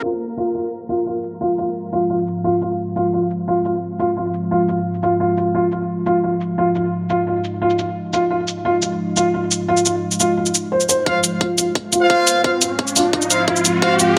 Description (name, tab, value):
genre	dark technical drum and bass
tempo	174 BPM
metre	4/4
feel	straight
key	F minor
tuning	A4 = 440 Hz
part	deep dark ambient pad	sustained chords	0.0-14.2 s	Ab3 to Eb5	-26 LUFS	equal	chorus, built-in reverb, vintage 12-bit sampler grit, sidechain pumping
part	felt-muted upright piano	arpeggios	0.0-14.1 s	F4 to C5	-22 LUFS	equal	sidechain pumping, low-pass filter, digital delay
part	electronic cabasa and hi-hat	drums	0.2-14.1 s	none	-20 LUFS	equal	small room reverb
part	bright brass ensemble	stabs	11.1-14.0 s	F4 to F5	-21 LUFS	equal	digital delay
part	electronic kick drum	drums	11.1-13.9 s	none	-23 LUFS	equal	high-pass filter on kick, small room reverb
part	riser	sound effects	11.7-14.2 s	none	-26 LUFS	equal	none
room	moderate lush hall reverb, RT60 1.8 s, digital ambience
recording	low-pass filter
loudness	-19 LUFS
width	mono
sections	0.0-11.1 A section; 11.1-14.2 B section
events	filter sweep on ambient pad 0.0-11.1, 11.1-14.2; filter sweep 0.0-11.1; build-up 11.1-14.2; riser 11.7-14.2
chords	0.0 Fm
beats	| 0.03 0.37 0.72 1.06 | 1.41 1.75 2.10 2.44 | 2.79 3.13 3.48 3.82 | 4.17 4.51 4.86 5.20 | 5.55 5.89 6.24 6.58 | 6.93 7.27 7.62 7.96 | 8.30 8.65 8.99 9.34 | 9.69 10.03 10.37 10.72 | 11.06 11.41 11.75 12.10 | 12.44 12.79 13.13 13.48 | 13.82 14.17